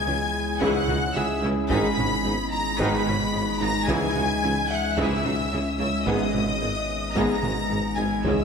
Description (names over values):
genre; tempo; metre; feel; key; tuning
cinematic, hybrid orchestral and electronic film score; 110 BPM; 4/4; straight; G# minor; A4 = 440 Hz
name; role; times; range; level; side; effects
clear symphonic violin section; melody; 0.0-8.4 s; D#6 to B6; -30 LUFS; left 3 dB; none
clear studio violin section; second line; 0.0-8.4 s; D#5 to B5; -30 LUFS; left 2 dB; none
metallic inharmonic drone; sustained chords; 0.0-8.4 s; G#3 to E5; -30 LUFS; left 1 dB; chorus, built-in reverb
saturated sub bass; bass; 0.0-8.4 s; G#1 to C#2; -35 LUFS; left 1 dB; none
felt-muted upright piano; texture; 0.0-8.4 s; B3 to G#5; -36 LUFS; left 2 dB; digital delay
clear symphonic viola section; accompaniment; 0.1-8.4 s; G#3 to G#4; -32 LUFS; equal; none
thumb-piano-like synth pluck; arpeggios; 0.1-8.4 s; C#3 to G#4; -34 LUFS; equal; none
mellow tuba; bass; 0.1-8.4 s; G#1 to C#2; -33 LUFS; right 3 dB; none
rich studio double bass section; bass; 0.1-8.3 s; G#1 to C#2; -33 LUFS; right 3 dB; none
rich symphonic cello section; bass; 0.1-8.3 s; G#2 to C#3; -33 LUFS; right 3 dB; none
mellow French horn section; sustained chords; 0.6-8.4 s; G#3 to G#4; -32 LUFS; left 4 dB; none
mellow trombone section; sustained chords; 0.6-8.4 s; G#2 to G#3; -33 LUFS; right 2 dB; none
taiko ensemble; drums; 0.6-8.4 s; none; -34 LUFS; left 1 dB; none
room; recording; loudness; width
wet scoring stage reverb, RT60 1.7 s; none; -22 LUFS; side -6 dB against mid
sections
0.0-8.4 A section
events
none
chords
0.0 C#m; 1.7 G#m; 3.9 C#m; 6.1 G#m